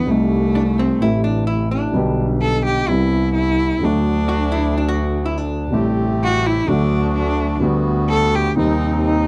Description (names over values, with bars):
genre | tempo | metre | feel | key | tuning
tango | 128 BPM | 4/4 | rubato | G major | A4 = 440 Hz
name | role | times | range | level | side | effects
warm cello | second line | 0.0-9.3 s | A3 to A4 | -23 LUFS | equal | none
dark grand piano | accompaniment | 0.0-9.3 s | A1 to G4 | -22 LUFS | equal | none
clear double bass | bass | 0.0-9.3 s | A1 to Eb2 | -24 LUFS | equal | transformer saturation
vintage hollow-body jazz guitar | second line | 0.6-6.1 s | C4 to F#4 | -27 LUFS | equal | none
bandoneon | stabs | 5.7-9.3 s | G3 to G4 | -30 LUFS | equal | none
room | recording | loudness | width
little or no reverb | dry, close 1970s-style studio recording | -18 LUFS | mono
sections
0.0-9.3 A section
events
cello solo 0.0-9.3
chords
0.1 Cm6; 1.0 Am; 2.0 G/B; 2.9 Cmaj7; 3.8 D; 5.7 Am7; 6.7 D; 7.6 Gmaj7/D; 8.6 Cm/Eb